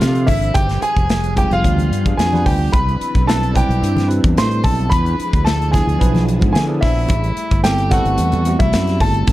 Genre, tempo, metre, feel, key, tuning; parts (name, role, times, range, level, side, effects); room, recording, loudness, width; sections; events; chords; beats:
electric jazz fusion; 110 BPM; 4/4; straight; A4 = 440 Hz
warm grand piano; melody; 0.0-9.3 s; E5 to C6; -21 LUFS; equal
crunchy overdriven guitar; second line; 0.0-9.3 s; E4 to C5; -27 LUFS; left 1 dB
bell-like tine electric piano; accompaniment; 0.0-9.3 s; F3 to B4; -22 LUFS; right 2 dB; lush chorus
string machine, full ensemble; sustained chords; 0.0-9.3 s; D3 to Ab5; -28 LUFS; left 1 dB; ensemble chorus
fretless electric bass; bass; 0.0-9.3 s; F1 to D3; -18 LUFS; equal
modern studio drum kit; drums; 0.0-9.3 s; hi-hat, kick drum, snare drum; -18 LUFS; equal
congas; percussion; 0.3-9.3 s; -25 LUFS; left 1 dB
little or no reverb; dark, warm production; -14 LUFS; side -16 dB against mid
0.0-9.3 A section
0.0 Dm9; 0.6 G7b9; 2.7 Cmaj9; 4.9 E7b9; 7.1 Am9
0.01 | 0.56 1.10 1.65 2.19 | 2.74 3.28 3.83 4.37 | 4.92 5.46 6.01 6.55 | 7.10 7.64 8.19 8.73 | 9.28